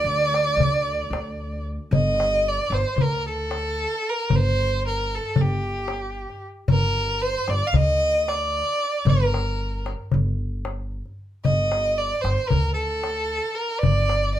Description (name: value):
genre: Turkish makam ensemble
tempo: 227 BPM (eighths)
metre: 9/8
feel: straight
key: G makam nihavent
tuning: A4 = 440 Hz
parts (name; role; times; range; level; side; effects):
- dark violin; melody; 0.0-14.4 s; G4 to F5; -23 LUFS; right 1 dB; plate reverb
- upright bass; bass; 0.0-14.4 s; G1 to D3; -26 LUFS; equal; none
- rich double bass; drone; 0.0-2.0 s; D2; -39 LUFS; equal; none
- darbuka; percussion; 0.1-14.3 s; none; -23 LUFS; left 2 dB; none
room: moderate small room reverb, RT60 0.5 s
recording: none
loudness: -20 LUFS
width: side -11 dB against mid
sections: 0.0-1.9 A section; 1.9-14.4 B section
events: none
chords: none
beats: 0.07 0.33 0.60 0.86 1.13 1.39 1.66 | 1.92 2.19 2.45 2.72 2.98 3.25 3.51 3.78 4.04 | 4.31 4.57 4.84 5.10 5.37 5.63 5.90 6.16 6.42 | 6.69 6.95 7.22 7.48 7.75 8.01 8.28 8.54 8.80 | 9.07 9.33 9.60 9.86 10.12 10.39 10.65 10.92 11.18 | 11.45 11.71 11.97 12.24 12.50 12.77 13.03 13.29 13.56 | 13.82 14.09 14.35